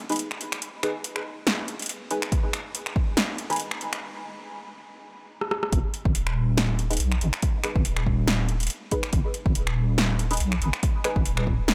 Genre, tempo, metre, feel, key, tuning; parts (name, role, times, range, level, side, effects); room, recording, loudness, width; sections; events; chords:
deep dubstep; 141 BPM; 4/4; swing 54% on 16ths, half-time; G# minor; A4 = 440 Hz
filtered dub chord stab; stabs; 0.1-3.6, 6.9-11.2 s; D#4 to B4; -35 LUFS; equal; phaser, lush chorus, dub echo
deep house drum kit; drums; 0.1-11.7 s; finger snaps, hi-hat, rim click, snare drum; -30 LUFS; equal; overdrive
electronic kick drum; drums; 2.3-3.1, 5.7-11.6 s; -27 LUFS; equal; overdrive
deep soft wobble bass; bass; 5.7-11.7 s; D#1 to B1; -27 LUFS; equal; chorus
light reverb; -26 LUFS; mono
0.0-5.7 A section; 5.7-11.7 B section
build-up 0.0-5.7; break 4.0-5.7; drum fill 5.4-5.7; drop 5.7-11.7
0.0 G#m